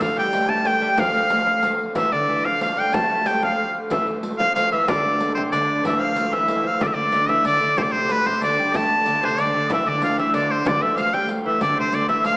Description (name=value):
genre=medieval dance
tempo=124 BPM (dotted quarters)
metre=6/8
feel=straight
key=D minor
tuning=A4 = 439 Hz
part: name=bright shawm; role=melody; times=0.0-12.4 s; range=B4 to A5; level=-20 LUFS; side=equal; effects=none
part: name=bright shawm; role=second line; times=0.0-12.4 s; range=B4 to A5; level=-28 LUFS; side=left 1 dB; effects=none
part: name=lute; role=second line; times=0.0-12.4 s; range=B2 to A3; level=-27 LUFS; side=equal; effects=none
part: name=warm hurdy-gurdy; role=drone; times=0.0-12.4 s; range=D3 to A3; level=-29 LUFS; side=equal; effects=none
part: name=frame drum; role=percussion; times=0.0-12.2 s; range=none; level=-30 LUFS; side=left 1 dB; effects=none
part: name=riq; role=percussion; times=0.0-12.4 s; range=none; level=-31 LUFS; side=equal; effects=none
room=wet recital hall reverb, RT60 1.9 s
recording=small speaker sound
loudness=-18 LUFS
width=side -26 dB against mid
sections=0.0-5.8 A section; 5.8-12.4 B section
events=speeding up 0.0-12.4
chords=none